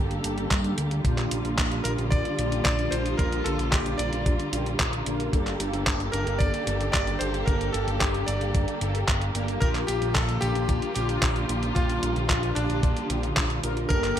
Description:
italo disco; 112 BPM; 4/4; straight; A4 = 441 Hz
dark studio string section; sustained chords; 0.0-14.2 s; D3 to A4; -31 LUFS; right 1 dB
mellow synth brass; stabs; 0.0-14.2 s; Bb3 to Bb4; -33 LUFS; left 1 dB; chorus, phaser
fat analog bass; bass; 0.0-14.2 s; G1 to G2; -29 LUFS; equal
detuned 8-bit digital drum machine; drums; 0.1-14.2 s; handclaps, hi-hat; -30 LUFS; equal
electronic kick drum; drums; 0.5-14.0 s; -26 LUFS; equal
bright electric grand piano; melody; 1.8-14.2 s; D4 to D5; -31 LUFS; left 1 dB; ping-pong delay
light reverb; bright 1980s-style digital production; -23 LUFS; side -10 dB against mid
0.0-14.2 A section
0.0 Gmadd9; 1.0 Bb6; 5.3 Gmadd9; 9.6 Bb6
0.51 | 1.05 1.58 2.12 2.65 | 3.19 3.73 4.26 4.80 | 5.33 5.87 6.40 6.94 | 7.47 8.01 8.55 9.08 | 9.62 10.15 10.69 11.22 | 11.76 12.30 12.83 13.37 | 13.90

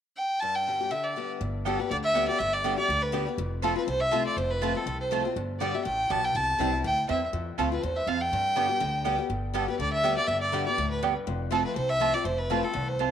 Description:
bluegrass; 244 BPM; 4/4; swing 56% on 8ths; G mixolydian; A4 = 435 Hz
clear fiddle; melody; 0.2-13.1 s; A4 to A5; -27 LUFS; equal
picked steel-string acoustic guitar; accompaniment; 0.4-13.1 s; E2 to G4; -33 LUFS; left 12 dB
upright bass; bass; 1.4-13.1 s; F1 to G2; -33 LUFS; equal
mandolin; stabs; 1.7-13.1 s; B3 to A5; -32 LUFS; right 10 dB
wet spring reverb, RT60 1.9 s, studio reverb; 1960s-style stereo with parts hard left and right; -25 LUFS; side -9 dB against mid
1.4-9.3 A section; 9.3-13.1 A section
0.4 G; 3.4 F; 5.4 G; 6.3 C; 7.3 F; 8.3 G; 11.3 F
0.18 | 0.42 0.67 0.92 1.16 | 1.41 1.66 1.91 2.15 | 2.40 2.65 2.89 3.14 | 3.39 3.63 3.88 4.13 | 4.37 4.62 4.87 5.11 | 5.36 5.61 5.85 6.10 | 6.35 6.59 6.84 7.08 | 7.33 7.58 7.82 8.07 | 8.32 8.56 8.81 9.05 | 9.30 9.55 9.79 10.04 | 10.29 10.53 10.78 11.03 | 11.27 11.52 11.77 12.01 | 12.26 12.50 12.75 13.00

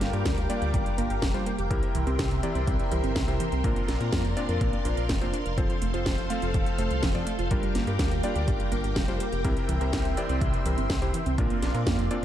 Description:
italo disco; 124 BPM; 4/4; straight; A4 = 440 Hz
string machine, full ensemble; sustained chords; 0.0-12.2 s; A4 to D6; -33 LUFS; left 1 dB; phaser, ensemble chorus
wide unison pluck; arpeggios; 0.0-12.2 s; C3 to Bb4; -34 LUFS; right 4 dB; cassette tape, ping-pong delay
clear electric grand piano; stabs; 0.0-12.2 s; Bb2 to F5; -33 LUFS; left 2 dB; ping-pong delay
round analog bass; bass; 0.0-12.2 s; F1 to Bb2; -29 LUFS; equal; tube saturation
house drum kit; drums; 0.0-12.2 s; hi-hat, snare drum; -34 LUFS; equal
electronic kick drum; drums; 0.3-12.0 s; -30 LUFS; equal
light reverb; dark, warm production; -24 LUFS; side -11 dB against mid
0.0-12.2 A section
0.0 Gm7; 1.7 C7; 3.6 Bbadd9; 5.6 F; 7.5 Gm7; 9.4 C7; 11.4 Bbadd9
0.25 0.74 1.22 | 1.71 2.19 2.67 3.16 | 3.64 4.12 4.61 5.09 | 5.58 6.06 6.54 7.03 | 7.51 8.00 8.48 8.96 | 9.45 9.93 10.41 10.90 | 11.38 11.87

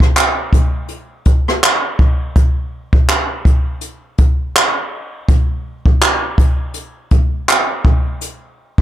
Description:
R&B; 82 BPM; 4/4; swing 58% on 16ths
jazz brush drum kit; drums; 0.0-8.8 s; handclaps, hi-hat, kick drum, rim click; -12 LUFS; equal
light reverb; -13 LUFS; side -13 dB against mid
0.0-8.8 A section
0.16 0.90 1.63 | 2.36 3.09 3.82 4.55 | 5.29 6.02 6.75 7.48 | 8.21

